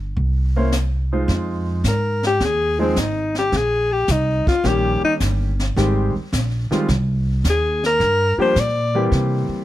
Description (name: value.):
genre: jazz, small-group swing and bop.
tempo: 107 BPM.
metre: 4/4.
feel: swing 69% on 8ths.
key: F minor.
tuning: A4 = 440 Hz.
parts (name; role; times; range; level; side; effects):
upright bass; bass; 0.0-9.5 s; G1 to C3; -21 LUFS; equal; none.
jazz brush drum kit; drums; 0.2-9.6 s; brushed snare drum, hi-hat, kick drum, snare drum; -25 LUFS; equal; none.
warm baby grand piano; accompaniment; 0.6-9.6 s; Eb3 to C5; -22 LUFS; equal; none.
warm alto saxophone; melody; 1.9-9.1 s; C4 to D5; -19 LUFS; left 2 dB; none.
room: light reverb.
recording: close, detailed microphones.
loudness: -17 LUFS.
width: side -14 dB against mid.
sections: 0.0-1.3 A section; 1.3-9.6 B section.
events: alto saxophone solo 1.3-9.6.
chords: 0.2 C7b9; 1.3 Fm7; 3.5 Bb9sus4; 4.6 Eb7; 5.8 Abmaj7; 8.0 Gm7; 9.1 C7.